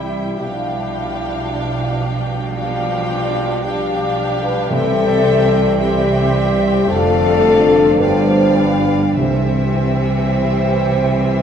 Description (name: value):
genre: classical, slow romantic movement for symphony orchestra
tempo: 48-56 BPM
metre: 4/4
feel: rubato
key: C major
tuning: A4 = 443 Hz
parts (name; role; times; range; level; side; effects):
- rich chamber violin section; melody; 0.0-11.4 s; E5 to G5; -27 LUFS; left 4 dB; none
- hollow flute section; second line; 0.0-11.4 s; E5 to G5; -27 LUFS; left 1 dB; none
- rich chamber violin section; second line; 0.0-11.4 s; C5 to F5; -29 LUFS; right 1 dB; none
- warm clarinet; second line; 0.0-11.4 s; C4 to G4; -29 LUFS; left 3 dB; none
- mellow bassoon; accompaniment; 0.0-11.4 s; E3 to G3; -26 LUFS; right 3 dB; none
- warm studio viola section; accompaniment; 0.0-11.4 s; G3 to E4; -26 LUFS; right 1 dB; none
- bright trombone section; sustained chords; 0.0-11.4 s; C3 to G3; -26 LUFS; right 3 dB; none
- warm French horn section; sustained chords; 0.0-11.4 s; D4 to C5; -19 LUFS; left 3 dB; none
- concert harp; arpeggios; 0.0-11.4 s; F2 to C5; -24 LUFS; left 2 dB; none
- clear chamber cello section; bass; 0.0-11.4 s; F2 to C3; -24 LUFS; right 2 dB; none
- rich studio double bass section; bass; 0.0-11.4 s; F1 to C2; -22 LUFS; right 3 dB; none
- timpani; percussion; 4.7-11.0 s; C3; -24 LUFS; right 1 dB; none
room: wet recital hall reverb, RT60 1.6 s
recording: recorded in a church or concert hall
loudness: -14 LUFS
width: side -8 dB against mid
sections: 0.0-11.4 A section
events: none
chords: 0.4 G7/B; 4.7 C; 6.9 Dm/F; 8.0 G7; 9.2 C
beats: | 0.41 1.48 2.56 3.64 | 4.71 5.80 6.89 8.00 | 9.18 10.38